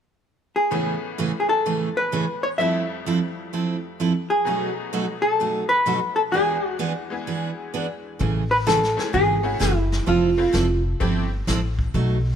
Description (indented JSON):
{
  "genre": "country, western swing",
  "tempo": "128 BPM",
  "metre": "4/4",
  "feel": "swing 66% on 8ths",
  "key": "A major",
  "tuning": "A4 = 438 Hz",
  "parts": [
    { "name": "vintage hollow-body jazz guitar", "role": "melody", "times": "0.6-10.8 s", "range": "E4 to E5", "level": "-21 LUFS", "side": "equal", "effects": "none" },
    { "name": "picked steel-string acoustic guitar", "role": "accompaniment", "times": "0.7-12.2 s", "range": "A2 to A4", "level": "-26 LUFS", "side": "right 4 dB", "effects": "none" },
    { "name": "tack piano", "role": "accompaniment", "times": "0.7-11.3 s", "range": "E2 to G#4", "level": "-33 LUFS", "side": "left 4 dB", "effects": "none" },
    { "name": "upright bass", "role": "bass", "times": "8.2-12.4 s", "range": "F1 to B1", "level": "-23 LUFS", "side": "equal", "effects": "none" },
    { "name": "vintage brush drum kit", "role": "drums", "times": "8.2-12.4 s", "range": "brushed snare drum, hi-hat, kick drum, snare drum", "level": "-30 LUFS", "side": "left 1 dB", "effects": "none" }
  ],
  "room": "moderate echo chamber reverb, RT60 2.0 s",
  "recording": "none",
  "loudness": "-20 LUFS",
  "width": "side -8 dB against mid",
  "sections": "0.7-8.2 A section; 8.2-12.4 B section",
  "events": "none",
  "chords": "0.0 N.C.; 0.7 Amaj7; 2.6 Fmaj7; 4.5 B7; 6.3 E7; 8.2 Amaj7; 10.1 Fmaj7"
}